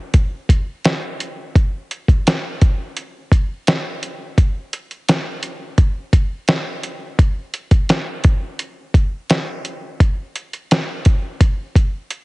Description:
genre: indie pop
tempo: 85 BPM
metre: 4/4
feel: straight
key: none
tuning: none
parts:
  - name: lo-fi sampler-style drum kit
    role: drums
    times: 0.1-12.2 s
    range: hi-hat, kick drum, snare drum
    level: -15 LUFS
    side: equal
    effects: none
room: light reverb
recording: heavily compressed radio sound, multiband compression, nothing above 10.9 kHz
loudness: -16 LUFS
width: side -23 dB against mid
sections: 0.0-12.2 A section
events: none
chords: none

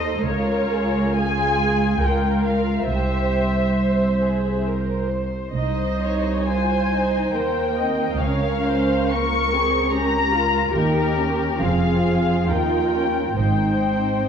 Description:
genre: classical, slow romantic movement for string orchestra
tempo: 69 BPM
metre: 3/4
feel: uneven beats, rubato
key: unclear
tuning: A4 = 440 Hz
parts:
  - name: muted studio violin section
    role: melody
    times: 0.0-14.3 s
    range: Bb4 to Db6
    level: -24 LUFS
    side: left 5 dB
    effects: none
  - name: muted studio violin section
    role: second line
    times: 0.0-14.3 s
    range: Bb3 to Eb5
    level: -25 LUFS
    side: equal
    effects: none
  - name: muted studio viola section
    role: accompaniment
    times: 0.0-14.2 s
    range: Eb4 to Eb5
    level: -26 LUFS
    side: right 3 dB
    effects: none
  - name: muted studio cello section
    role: bass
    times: 0.0-14.3 s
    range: C2 to Ab2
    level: -23 LUFS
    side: right 1 dB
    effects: none
  - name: muted studio double bass section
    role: bass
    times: 0.2-14.3 s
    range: F1 to Eb2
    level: -26 LUFS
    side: right 2 dB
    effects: none
room: wet scoring stage reverb, RT60 1.7 s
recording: dark, warm production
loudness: -18 LUFS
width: side -7 dB against mid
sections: 0.0-14.3 A section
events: none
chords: 0.3 Bbm/Db; 2.0 Gm7b5/Db; 2.9 C; 5.5 Cm; 8.2 Bbm/Db; 10.7 Eb7; 11.6 Fm; 12.5 Eb7; 13.4 Ab

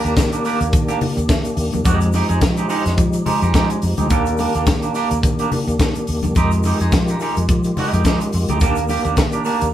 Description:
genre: disco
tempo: 107 BPM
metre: 4/4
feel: swing 56% on 16ths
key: Eb major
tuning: A4 = 441 Hz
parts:
  - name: twangy electric guitar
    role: accompaniment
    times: 0.0-9.7 s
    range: Ab3 to Ab4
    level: -22 LUFS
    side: right 4 dB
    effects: phaser
  - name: percussive tonewheel organ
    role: sustained chords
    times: 0.0-9.7 s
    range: Eb3 to G4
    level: -24 LUFS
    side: left 1 dB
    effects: overdrive, chorus vibrato, slow rotary speaker
  - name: fingered electric bass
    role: bass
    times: 0.0-9.7 s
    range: D2 to F3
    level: -20 LUFS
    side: equal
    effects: none
  - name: tight funk drum kit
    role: drums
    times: 0.0-9.7 s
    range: hi-hat, kick drum, snare drum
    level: -20 LUFS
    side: equal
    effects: none
  - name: egg shaker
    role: percussion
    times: 0.1-9.7 s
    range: none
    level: -37 LUFS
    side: left 6 dB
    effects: none
  - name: congas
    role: percussion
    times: 0.2-9.3 s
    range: none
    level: -27 LUFS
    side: left 2 dB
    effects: none
room: wet small room reverb, RT60 0.5 s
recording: band playing live in one room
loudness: -15 LUFS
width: side -12 dB against mid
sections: 0.0-9.7 A section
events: none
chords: 0.0 Ebmaj7; 1.9 Fm9; 4.1 Ebmaj7; 6.4 Fm9; 8.6 Ebmaj7

